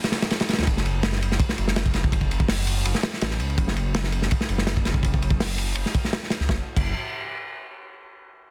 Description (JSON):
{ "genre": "drum and bass, jungle", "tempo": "165 BPM", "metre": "4/4", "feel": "straight", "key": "F# minor", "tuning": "A4 = 440 Hz", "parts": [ { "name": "lush unison pad", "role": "sustained chords", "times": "0.0-0.6, 6.5-6.7 s", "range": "B3 to A4", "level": "-49 LUFS", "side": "equal", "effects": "none" }, { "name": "crunchy breakbeat drum kit", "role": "drums", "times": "0.0-6.8 s", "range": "crash cymbal, hi-hat, kick drum, ride cymbal, snare drum", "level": "-26 LUFS", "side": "equal", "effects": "none" }, { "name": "dark detuned saw bass", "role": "bass", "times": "0.6-6.9 s", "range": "F#1 to D2", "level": "-28 LUFS", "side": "equal", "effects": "none" } ], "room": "little or no reverb", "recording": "dense, heavily limited modern master", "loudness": "-24 LUFS", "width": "mono", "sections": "0.7-6.5 A section; 6.5-7.9 B section", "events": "none", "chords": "0.0 Bm7; 0.7 N.C.; 6.5 F#m7", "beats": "0.31 | 0.67 1.04 1.40 1.76 | 2.13 2.49 2.85 3.22 | 3.58 3.94 4.31 4.67 | 5.04 5.40 5.76 6.13 | 6.49 6.85" }